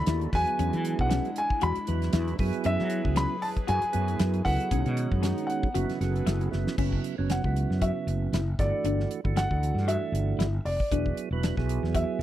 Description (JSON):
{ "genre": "electric jazz fusion", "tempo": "116 BPM", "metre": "4/4", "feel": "swing 56% on 16ths", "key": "F# minor", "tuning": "A4 = 440 Hz", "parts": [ { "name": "warm grand piano", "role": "melody", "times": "0.0-12.2 s", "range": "D5 to B5", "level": "-31 LUFS", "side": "equal", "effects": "slapback echo" }, { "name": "percussive tonewheel organ", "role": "accompaniment", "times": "0.0-12.2 s", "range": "C#3 to B4", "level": "-32 LUFS", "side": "right 8 dB", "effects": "slow rotary speaker" }, { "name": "airy breathy pad", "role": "sustained chords", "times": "0.0-6.8 s", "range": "D3 to B4", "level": "-38 LUFS", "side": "left 3 dB", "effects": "chorus" }, { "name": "semi-hollow electric guitar", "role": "stabs", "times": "0.1-12.1 s", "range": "C#4 to F#4", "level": "-35 LUFS", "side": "left 13 dB", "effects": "analog chorus" }, { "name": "fretless electric bass", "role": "bass", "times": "0.1-12.2 s", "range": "E1 to F#3", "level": "-28 LUFS", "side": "equal", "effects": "none" }, { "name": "damped 70s drum kit", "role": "drums", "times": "0.1-12.1 s", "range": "crash cymbal, hi-hat, kick drum, snare drum", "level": "-30 LUFS", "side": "equal", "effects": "none" } ], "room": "little or no reverb", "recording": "dry, close 1970s-style studio recording", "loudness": "-25 LUFS", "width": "side -13 dB against mid", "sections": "0.0-6.8 A section; 6.8-12.2 B section", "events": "drum fill 6.5; grand piano solo 6.8-12.2", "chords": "0.3 E13; 2.4 F#m11; 4.7 B69; 5.7 F#m11; 6.8 F#5; 8.6 Gsus2; 10.9 E9" }